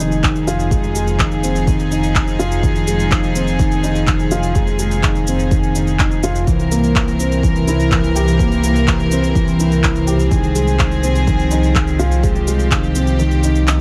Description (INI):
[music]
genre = piano and strings electronica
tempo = 125 BPM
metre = 4/4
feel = straight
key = F minor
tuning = A4 = 440 Hz
[part]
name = warm studio string section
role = sustained chords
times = 0.0-13.8 s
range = E3 to Bb4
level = -25 LUFS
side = equal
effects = none
[part]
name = felt-muted upright piano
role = riff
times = 0.0-13.8 s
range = Eb3 to G4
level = -20 LUFS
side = equal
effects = digital delay
[part]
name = dark detuned saw bass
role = bass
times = 0.0-13.8 s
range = F1 to C2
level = -21 LUFS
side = equal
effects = sidechain pumping
[part]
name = electronic shaker and handclaps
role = drums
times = 0.0-13.8 s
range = none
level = -25 LUFS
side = equal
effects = none
[part]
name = electronic kick drum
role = drums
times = 0.2-12.8 s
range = none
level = -20 LUFS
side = equal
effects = none
[sound]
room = little or no reverb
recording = none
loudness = -16 LUFS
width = mono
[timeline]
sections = 0.0-13.8 A section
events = kick drops out 13.2-13.8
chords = 0.0 Fm7; 6.5 C7; 10.3 Ab6/C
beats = 0.23 | 0.71 1.20 1.68 2.15 | 2.63 3.12 3.60 4.08 | 4.55 5.04 5.51 6.00 | 6.47 6.96 7.43 7.92 | 8.39 8.88 9.36 9.84 | 10.31 10.79 11.28 11.76 | 12.23 12.71 13.20 13.68